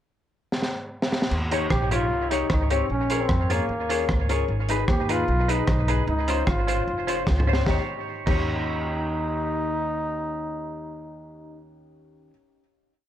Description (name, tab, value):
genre	ska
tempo	151 BPM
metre	4/4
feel	straight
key	Eb mixolydian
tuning	A4 = 440 Hz
part	crunchy breakbeat drum kit	drums	0.5-8.4 s	crash cymbal, hi-hat, kick drum, rim click, snare drum, toms	-27 LUFS	equal	none
part	upright bass	bass	1.3-12.3 s	F1 to F2	-27 LUFS	equal	none
part	clean electric guitar	accompaniment	1.5-12.4 s	Db4 to Db5	-31 LUFS	right 6 dB	spring reverb, tape echo
part	dark upright piano	stabs	1.5-12.3 s	Db4 to Db5	-30 LUFS	left 7 dB	tape echo
part	clear trombone	melody	1.7-11.6 s	Bb3 to G4	-28 LUFS	equal	none
room	light reverb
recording	none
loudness	-22 LUFS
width	side -11 dB against mid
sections	0.0-1.3 pickup bar; 1.3-7.7 head; 7.7-10.8 final chord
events	drum fill 0.5-1.3, 7.3-7.7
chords	0.0 N.C.; 1.3 Eb7; 2.9 Bbm7; 4.5 Abm; 6.1 Dbmaj7; 7.7 Eb7